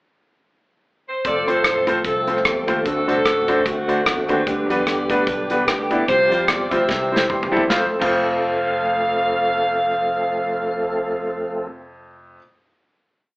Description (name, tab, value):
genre	uptempo gospel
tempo	149 BPM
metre	4/4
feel	swing 56% on 8ths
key	F major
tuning	A4 = 440 Hz
part	edgy saxophone section	melody	1.1-11.7 s	A3 to F5	-22 LUFS	equal	none
part	fingered electric bass	bass	1.2-12.4 s	F1 to F2	-36 LUFS	equal	none
part	modern studio drum kit	drums	1.2-8.1 s	crash cymbal, hi-hat, kick drum, rim click, snare drum, toms	-23 LUFS	equal	none
part	percussive tonewheel organ	sustained chords	1.3-11.7 s	D3 to A4	-24 LUFS	equal	slow rotary speaker, overdrive, chorus vibrato
part	clear baby grand piano	accompaniment	1.5-12.4 s	F2 to C6	-22 LUFS	equal	none
room	moderate large studio reverb, RT60 0.9 s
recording	band playing live in one room, AM radio sound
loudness	-17 LUFS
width	side -24 dB against mid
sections	0.0-1.2 pickup bar; 1.2-7.7 breakdown; 7.7-10.9 final chord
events	drum fill 6.9-7.7; grand piano fill 7.1-7.7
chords	0.0 N.C.; 1.2 F; 2.9 D7; 4.5 G/D; 6.1 Csus4; 6.9 C; 7.7 F